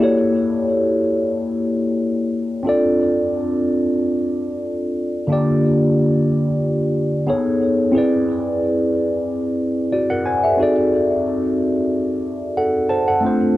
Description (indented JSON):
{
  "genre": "soul",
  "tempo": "91 BPM",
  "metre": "4/4",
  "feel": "swing 54% on 16ths",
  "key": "unclear",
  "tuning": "A4 = 440 Hz",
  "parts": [
    { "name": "tine electric piano", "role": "solo", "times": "0.0-13.6 s", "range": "D3 to A5", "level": "-16 LUFS", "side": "equal", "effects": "phaser, tape echo" }
  ],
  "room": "light reverb",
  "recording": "dry, close 1970s-style studio recording",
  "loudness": "-16 LUFS",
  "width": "side -15 dB against mid",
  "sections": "0.0-13.2 A section",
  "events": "none",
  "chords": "0.0 A7b9; 2.7 Dm7; 5.3 Gm7/D; 7.3 B13; 7.9 E7b13; 10.6 D7b9"
}